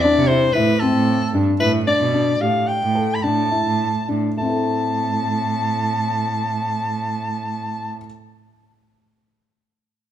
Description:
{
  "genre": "contemporary instrumental, chamber music in an uneven meter",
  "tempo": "101-116 BPM",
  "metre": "5/4",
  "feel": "straight",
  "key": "A minor",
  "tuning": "A4 = 439 Hz",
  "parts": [
    { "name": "raspy soprano saxophone", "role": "melody", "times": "0.0-8.0 s", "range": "A4 to B5", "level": "-21 LUFS", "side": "left 1 dB", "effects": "none" },
    { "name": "felt-muted upright piano", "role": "arpeggios", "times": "0.0-8.1 s", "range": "A3 to A4", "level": "-22 LUFS", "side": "left 4 dB", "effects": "none" },
    { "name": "rich cello", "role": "bass", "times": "0.2-8.0 s", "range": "G2 to C3", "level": "-23 LUFS", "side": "right 5 dB", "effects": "none" }
  ],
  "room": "moderate recital hall reverb, RT60 1.7 s",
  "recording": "none",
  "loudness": "-17 LUFS",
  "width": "side -10 dB against mid",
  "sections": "0.0-4.4 A section; 4.4-7.3 B section",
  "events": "slowing down 0.0-4.4",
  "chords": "0.0 Am; 1.6 Gsus2/A; 4.4 Am",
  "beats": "0.03 0.55 1.06 | 1.59 2.13 2.67 3.23 3.79 | 4.38 4.97 5.57 6.16 6.75"
}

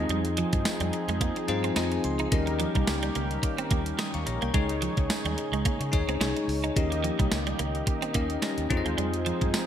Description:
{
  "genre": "1980s-style pop",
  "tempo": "108 BPM",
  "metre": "4/4",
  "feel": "swing 55% on 16ths",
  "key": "Eb mixolydian",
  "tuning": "A4 = 441 Hz",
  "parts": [
    { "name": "bell-like tine electric piano", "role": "accompaniment", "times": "0.0-9.7 s", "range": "C4 to Eb6", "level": "-31 LUFS", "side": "left 5 dB", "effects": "phaser" },
    { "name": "warm analog pad", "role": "sustained chords", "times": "0.0-9.7 s", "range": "Db3 to Ab4", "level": "-35 LUFS", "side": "right 1 dB", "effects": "chorus" },
    { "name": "clean electric guitar", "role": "riff", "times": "0.0-9.4 s", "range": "F3 to Eb4", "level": "-34 LUFS", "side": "right 6 dB", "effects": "analog chorus, ping-pong delay" },
    { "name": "mellow synth brass", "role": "stabs", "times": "0.0-9.7 s", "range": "F3 to Eb5", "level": "-36 LUFS", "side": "equal", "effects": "chorus, ping-pong delay" },
    { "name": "vintage muted fingered electric bass", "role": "bass", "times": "0.0-9.5 s", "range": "Bb1 to Db3", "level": "-32 LUFS", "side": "equal", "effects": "none" },
    { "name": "clean 12-bit digital drum machine", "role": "drums", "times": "0.1-9.7 s", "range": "hi-hat, kick drum, snare drum, tambourine", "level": "-29 LUFS", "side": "equal", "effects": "gated reverb" }
  ],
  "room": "moderate plate reverb, RT60 2.0 s",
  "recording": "bright 1980s-style digital production",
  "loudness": "-25 LUFS",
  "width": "side -9 dB against mid",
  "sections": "0.0-9.7 A section",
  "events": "tine electric piano fill 1.2-2.3",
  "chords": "0.0 Fm7; 2.3 Eb7; 4.5 Dbsus2; 6.8 Eb7; 8.7 Fm7",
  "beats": "| 0.10 0.65 1.21 1.76 | 2.32 2.88 3.43 3.99 | 4.54 5.10 5.65 6.21 | 6.76 7.32 7.88 8.43 | 8.99 9.54"
}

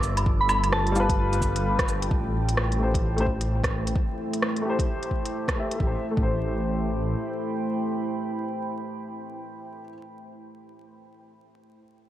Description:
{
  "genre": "future garage",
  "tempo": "130 BPM",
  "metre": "4/4",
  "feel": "swing 61% on 16ths",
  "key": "A minor",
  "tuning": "A4 = 440 Hz",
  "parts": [
    { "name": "deep dark ambient pad", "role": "sustained chords", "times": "0.0-9.8 s", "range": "G3 to B5", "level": "-31 LUFS", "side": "equal", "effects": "chorus, built-in reverb, sidechain pumping" },
    { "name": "dark detuned saw bass", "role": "bass", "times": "0.0-7.1 s", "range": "G1 to A1", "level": "-26 LUFS", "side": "equal", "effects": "sidechain pumping" },
    { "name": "organic electronic drum kit", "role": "drums", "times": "0.0-5.8 s", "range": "cabasa, hi-hat, rim click, woodblock", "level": "-29 LUFS", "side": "right 1 dB", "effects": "none" },
    { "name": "electronic kick drum", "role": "drums", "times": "0.3-6.3 s", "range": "none", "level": "-26 LUFS", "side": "equal", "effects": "none" },
    { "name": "soft synth bell", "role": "melody", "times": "0.4-1.2 s", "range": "A5 to B5", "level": "-30 LUFS", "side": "right 1 dB", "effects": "chorus, analog delay" },
    { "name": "dark upright piano", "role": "accompaniment", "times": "0.9-9.9 s", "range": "G3 to E5", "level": "-31 LUFS", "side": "left 2 dB", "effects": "sidechain pumping, low-pass filter, analog delay" }
  ],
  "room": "light reverb",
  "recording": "vinyl crackle",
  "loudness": "-23 LUFS",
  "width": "side -13 dB against mid",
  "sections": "0.0-2.1 A section; 2.1-5.8 B section; 5.8-9.5 C section",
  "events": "filter sweep on upright piano 2.1-5.8",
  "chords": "0.0 G7; 2.1 Am7",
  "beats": "| 0.26 0.73 1.19 1.65 | 2.11 2.57 3.03 3.50 | 3.96 4.42 4.88 5.34 | 5.80 6.26 6.73 7.19 | 7.65 8.11 8.57 9.03"
}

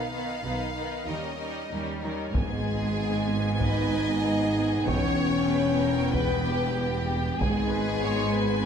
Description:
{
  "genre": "cinematic, epic orchestral film score",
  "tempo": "95 BPM",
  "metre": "4/4",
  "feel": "straight",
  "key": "G# harmonic minor",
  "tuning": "A4 = 442 Hz",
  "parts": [
    { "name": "bright symphonic violin section", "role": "melody", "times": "0.0-8.6 s", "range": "G#4 to E#5", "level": "-36 LUFS", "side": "left 2 dB", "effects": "none" },
    { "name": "warm symphonic violin section", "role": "second line", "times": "0.0-8.7 s", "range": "D#4 to C#5", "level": "-34 LUFS", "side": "left 3 dB", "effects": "none" },
    { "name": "rich symphonic viola section", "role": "accompaniment", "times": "0.0-8.7 s", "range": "D#3 to G#5", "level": "-34 LUFS", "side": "right 2 dB", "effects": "none" },
    { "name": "rich symphonic cello section", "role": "bass", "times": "0.0-8.7 s", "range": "E2 to G3", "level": "-32 LUFS", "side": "right 2 dB", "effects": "none" },
    { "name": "rich symphonic double bass section", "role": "bass", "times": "0.0-8.7 s", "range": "E1 to D#2", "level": "-33 LUFS", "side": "right 4 dB", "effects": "none" },
    { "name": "mellow French horn section", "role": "sustained chords", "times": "2.3-8.6 s", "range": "G#3 to D#4", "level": "-28 LUFS", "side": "left 4 dB", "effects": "none" },
    { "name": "warm trombone section", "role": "sustained chords", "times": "2.3-8.7 s", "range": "G2 to B3", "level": "-35 LUFS", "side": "right 6 dB", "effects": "none" },
    { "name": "taiko ensemble", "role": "drums", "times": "2.3-8.0 s", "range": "none", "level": "-30 LUFS", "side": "equal", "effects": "none" }
  ],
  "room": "moderate scoring stage reverb, RT60 1.8 s",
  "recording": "none",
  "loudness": "-24 LUFS",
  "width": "side -7 dB against mid",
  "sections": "0.0-2.3 A section; 2.3-8.7 B section",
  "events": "none",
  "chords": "0.0 B; 1.1 D#7; 2.3 G#m; 4.9 Em; 7.4 G#m",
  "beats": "0.45 1.08 1.72 | 2.35 2.98 3.61 4.24 | 4.88 5.51 6.14 6.78 | 7.41 8.04"
}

